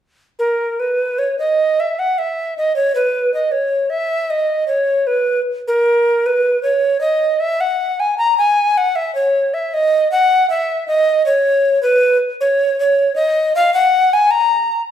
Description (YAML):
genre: classical, baroque-style fantasia for unaccompanied recorder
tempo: 78 BPM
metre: 4/4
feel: rubato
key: B major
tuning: A4 = 439 Hz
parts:
  - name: mellow tenor recorder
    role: solo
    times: 0.4-14.8 s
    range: A#4 to A#5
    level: -14 LUFS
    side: equal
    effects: none
room: wet recital hall reverb, RT60 1.3 s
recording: minimal, uncompressed stereo recording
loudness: -14 LUFS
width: side -10 dB against mid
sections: 0.4-14.9 A section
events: none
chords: none